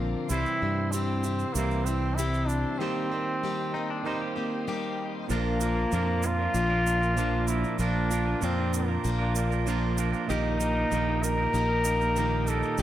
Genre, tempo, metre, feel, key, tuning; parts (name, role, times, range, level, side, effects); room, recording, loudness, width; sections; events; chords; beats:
folk rock and heartland rock; 96 BPM; 4/4; straight; A4 = 439 Hz
picked plugged-in steel-string acoustic guitar; accompaniment; 0.0-12.8 s; Bb2 to G4; -34 LUFS; left 6 dB
tonewheel organ; sustained chords; 0.0-12.8 s; Bb3 to C6; -41 LUFS; right 1 dB; slow rotary speaker, chorus vibrato
twangy electric guitar; riff; 0.0-12.8 s; Bb2 to C5; -32 LUFS; right 8 dB
fingered electric bass; bass; 0.0-12.8 s; Bb1 to G2; -28 LUFS; equal
brilliant trombone; melody; 0.3-12.8 s; Bb3 to Bb4; -30 LUFS; left 1 dB
egg shaker; percussion; 0.3-12.8 s; -38 LUFS; right 8 dB
clean lap steel guitar; second line; 3.7-5.1 s; D4 to G4; -36 LUFS; left 3 dB
light reverb, small room ambience; -25 LUFS; side -12 dB against mid
0.0-5.3 A section; 5.3-12.8 B section
break 2.8-5.3
0.3 C; 2.8 Eb6; 5.3 Bb; 10.3 Eb/Bb
| 0.30 0.93 1.55 2.18 | 2.81 3.43 4.05 4.68 | 5.30 5.93 6.55 7.17 | 7.80 8.42 9.04 9.67 | 10.29 10.91 11.54 12.16 | 12.78